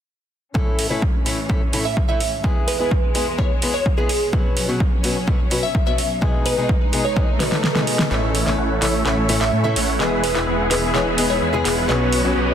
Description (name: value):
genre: EDM, festival progressive house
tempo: 127 BPM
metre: 4/4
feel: straight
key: unclear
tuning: A4 = 440 Hz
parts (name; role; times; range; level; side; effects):
- fingerpicked acoustic archtop guitar; accompaniment; 0.5-12.4 s; A2 to A4; -24 LUFS; left 2 dB; sidechain pumping, digital delay
- rich studio string section; sustained chords; 0.6-12.5 s; E2 to G#4; -28 LUFS; equal; sidechain pumping, low-pass filter
- electronic kick drum; drums; 0.6-7.3 s; none; -20 LUFS; equal; overdrive
- pop drum kit; drums; 0.8-12.2 s; hi-hat, snare drum; -24 LUFS; right 1 dB; high-pass filter on hats, high-pass filter on snare
- glassy wavetable pluck; melody; 1.9-11.7 s; G#4 to E5; -25 LUFS; right 1 dB; chorus, digital delay
- swell and riser; sound effects; 7.3-12.5 s; none; -31 LUFS; right 1 dB; none
- big supersaw lead; riff; 8.1-12.5 s; F#3 to F#5; -21 LUFS; equal; sidechain pumping, low-pass filter, digital delay
- detuned saw bass; bass; 8.1-12.5 s; E1 to A2; -24 LUFS; equal; sidechain pumping
room: light reverb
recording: dense, heavily limited modern master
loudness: -17 LUFS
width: side -9 dB against mid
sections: 0.6-8.1 A section; 8.1-12.5 B section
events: filter sweep on string section 0.6-8.1, 8.1-12.5; swell 7.3-8.1; drum fill 7.4-8.1, 8.1-12.5; kick drops out 7.6-8.1; build-up 8.1-12.5; filter sweep on supersaw synth 8.1-12.5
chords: 0.6 A; 2.4 E; 4.3 Bsus2; 6.2 G#m/B; 8.1 A; 10.0 E; 11.9 Bsus2